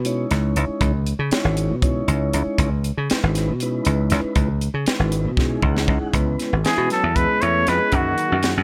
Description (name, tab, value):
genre	electric jazz fusion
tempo	236 BPM (eighths)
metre	7/8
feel	straight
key	C# minor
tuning	A4 = 444 Hz
part	dry thumbed slap bass	bass	0.0-8.6 s	G#1 to C#3	-23 LUFS	equal	none
part	crisp fusion drum kit	drums	0.0-8.6 s	hi-hat, kick drum, snare drum	-26 LUFS	equal	none
part	mellow tonewheel organ	accompaniment	0.1-8.6 s	F#3 to F#5	-29 LUFS	equal	slow rotary speaker
part	trumpet with straight mute	melody	6.7-8.5 s	F#4 to C#5	-22 LUFS	equal	none
part	dark trombone	second line	6.7-8.5 s	D#3 to A3	-30 LUFS	equal	none
room	little or no reverb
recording	none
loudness	-20 LUFS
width	mono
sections	0.0-6.1 A section; 6.1-8.6 B section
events	drum fill 5.4-6.1; tonewheel organ fill 5.4-6.1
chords	0.0 C#m9; 6.1 C#m7; 7.9 F#13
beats	0.05 0.30 0.56 | 0.81 1.06 1.32 1.57 1.82 2.08 2.33 | 2.59 2.84 3.09 3.35 3.60 3.86 4.11 | 4.36 4.62 4.87 5.13 5.38 5.63 5.89 | 6.14 6.40 6.65 6.91 7.16 7.42 7.67 | 7.93 8.18 8.44